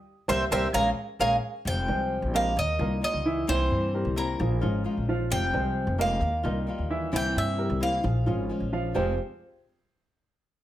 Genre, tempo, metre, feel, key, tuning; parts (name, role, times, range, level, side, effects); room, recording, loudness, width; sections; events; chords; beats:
latin; 132 BPM; 4/4; straight; F minor; A4 = 440 Hz
Cuban tres; melody; 0.3-8.5 s; Bb4 to Bb5; -28 LUFS; right 1 dB
flamenco guitar; accompaniment; 0.3-9.1 s; F2 to G4; -33 LUFS; left 4 dB
dark baby grand piano; arpeggios; 0.3-9.2 s; E3 to F5; -31 LUFS; right 2 dB
upright bass; bass; 0.3-9.2 s; F1 to G2; -29 LUFS; equal
moderate large studio reverb, RT60 0.8 s; -24 LUFS; side -13 dB against mid
0.0-1.7 A section; 1.7-9.0 B section; 9.0-10.6 C section
band accent 0.0-1.7
0.0 C7; 0.7 Bbm7; 1.7 Fmadd9; 2.6 Ebadd9; 3.5 C7; 4.4 Bbm7; 5.3 Fmadd9; 6.2 Ebadd9; 7.1 C7; 8.0 Bbm7; 9.0 Fmadd9
0.29 0.75 1.20 | 1.66 2.11 2.57 3.03 | 3.48 3.94 4.39 4.85 | 5.30 5.76 6.22 6.67 | 7.13 7.59 8.04 8.50 | 8.96